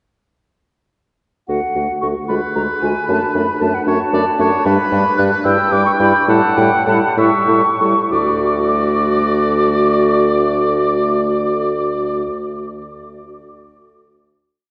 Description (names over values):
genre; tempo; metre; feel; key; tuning
quick classical-period movement for wind quintet; 62-77 BPM (dotted quarters); 6/8; straight; D major; A4 = 443 Hz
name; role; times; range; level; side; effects
mellow hollow silver concert flute; melody; 1.5-12.2 s; F#5 to F#6; -21 LUFS; equal; none
clear clarinet; accompaniment; 1.5-12.2 s; D4 to F#4; -25 LUFS; equal; none
mellow French horn; accompaniment; 1.5-12.2 s; G3 to A3; -24 LUFS; equal; none
dark bassoon; bass; 1.5-12.2 s; D2 to A2; -21 LUFS; equal; none
warm oboe; second line; 2.3-12.2 s; B4 to G5; -23 LUFS; equal; none
room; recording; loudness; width
wet cathedral reverb, RT60 5.0 s; dark, warm production, nothing above 11.0 kHz; -16 LUFS; mono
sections
1.5-8.1 A section; 8.1-11.8 final chord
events
slowing down 3.9-8.1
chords
1.5 D; 2.3 Ddim7; 3.1 D/F#; 4.7 G; 5.5 Em/G; 6.3 A7; 8.1 D